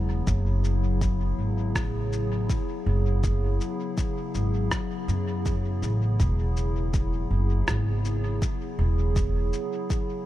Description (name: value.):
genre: ambient dub.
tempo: 81 BPM.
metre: 4/4.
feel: swing 54% on 16ths.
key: unclear.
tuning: A4 = 438 Hz.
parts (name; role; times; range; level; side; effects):
warbly tape-like pad; sustained chords; 0.0-10.3 s; C#3 to G#4; -31 LUFS; left 1 dB; chorus, built-in reverb.
upright bass; bass; 0.0-9.5 s; E1 to F#2; -25 LUFS; equal; none.
electronic kick drum; drums; 0.3-10.1 s; none; -28 LUFS; equal; small room ambience.
electronic shaker and rim click; drums; 0.3-10.1 s; none; -34 LUFS; left 1 dB; small room ambience, dub echo.
room: little or no reverb.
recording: none.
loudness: -24 LUFS.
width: side -14 dB against mid.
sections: 0.3-10.3 A section.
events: none.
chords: 0.3 F#m7; 6.2 E6.